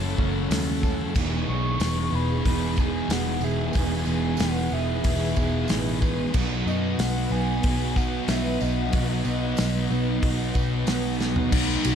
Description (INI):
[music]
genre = rock, shoegaze and dream pop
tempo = 92 BPM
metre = 4/4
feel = straight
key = unclear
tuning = A4 = 438 Hz
[part]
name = soft octave-layered synth lead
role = melody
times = 0.0-11.9 s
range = D#4 to C#6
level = -34 LUFS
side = equal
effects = chorus, phaser, tape echo
[part]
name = string machine, full ensemble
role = sustained chords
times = 0.0-11.9 s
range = A3 to E6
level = -38 LUFS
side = equal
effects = ensemble chorus
[part]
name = picked twelve-string acoustic guitar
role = arpeggios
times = 0.0-11.9 s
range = E3 to A4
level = -36 LUFS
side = left 6 dB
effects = analog chorus, tape echo
[part]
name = mellow electric guitar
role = riff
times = 0.0-11.5 s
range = E2 to A4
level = -31 LUFS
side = right 13 dB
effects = reverse reverb
[part]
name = sludgy distorted guitar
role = riff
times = 0.0-11.9 s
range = E2 to B3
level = -30 LUFS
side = right 3 dB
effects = overdrive
[part]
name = thick fuzz guitar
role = riff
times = 0.0-11.9 s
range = E2 to B3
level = -31 LUFS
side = left 9 dB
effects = distortion, analog chorus
[part]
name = vintage muted picked electric bass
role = bass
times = 0.0-11.9 s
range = E1 to F#2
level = -28 LUFS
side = equal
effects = none
[part]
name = loose indie drum kit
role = drums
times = 0.2-11.9 s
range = crash cymbal, hi-hat, kick drum, ride cymbal, snare drum, toms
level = -27 LUFS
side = equal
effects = none
[part]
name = tambourine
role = percussion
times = 0.5-11.9 s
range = none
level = -43 LUFS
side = right 15 dB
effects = none
[sound]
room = small room ambience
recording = none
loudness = -22 LUFS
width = side -8 dB against mid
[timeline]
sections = 0.0-11.5 A section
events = drum fill 11.2-11.5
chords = 0.0 F#m7; 1.2 Emaj7; 6.3 B